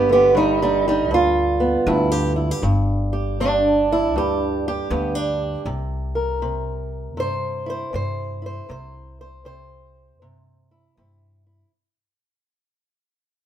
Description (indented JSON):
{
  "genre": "acoustic country blues, solo or duo",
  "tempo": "79 BPM",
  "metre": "4/4",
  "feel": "swing 64% on 8ths",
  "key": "C major",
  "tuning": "A4 = 440 Hz",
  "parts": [
    { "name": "fingerpicked old ladder-braced acoustic guitar", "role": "melody", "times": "0.0-11.7 s", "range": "G2 to C5", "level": "-19 LUFS", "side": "right 2 dB", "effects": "none" },
    { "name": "upright bass", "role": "bass", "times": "0.0-11.6 s", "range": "G1 to G2", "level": "-26 LUFS", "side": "equal", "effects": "none" }
  ],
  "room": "moderate studio reverb, RT60 0.8 s",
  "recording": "band playing live in one room",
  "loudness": "-18 LUFS",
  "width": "side -10 dB against mid",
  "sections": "0.0-11.7 A section",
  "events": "fade-out 2.0-11.7",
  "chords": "0.0 G7; 5.7 C"
}